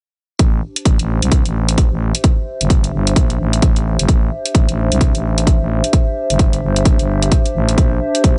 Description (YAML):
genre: bass house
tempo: 130 BPM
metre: 4/4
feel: swing 60% on 16ths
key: A minor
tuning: A4 = 440 Hz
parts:
  - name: growling FM bass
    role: bass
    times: 0.4-8.4 s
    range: G1 to C2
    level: -20 LUFS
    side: equal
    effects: tube saturation, sidechain pumping
  - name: electronic hi-hat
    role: drums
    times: 0.4-8.4 s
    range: none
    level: -23 LUFS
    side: equal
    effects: none
  - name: electronic kick drum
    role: drums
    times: 0.4-8.3 s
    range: none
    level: -15 LUFS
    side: equal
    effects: none
  - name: warbly tape-like pad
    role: texture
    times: 0.8-8.4 s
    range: D4 to E5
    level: -25 LUFS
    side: equal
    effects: chorus, built-in reverb, sidechain pumping
room: little or no reverb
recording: nothing above 10.3 kHz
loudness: -15 LUFS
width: mono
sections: 0.4-8.4 A section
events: none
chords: 0.4 Am; 7.8 Bb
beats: | 0.39 0.85 1.32 1.78 | 2.24 2.70 3.16 3.62 | 4.08 4.55 5.01 5.47 | 5.93 6.39 6.86 7.32 | 7.78 8.24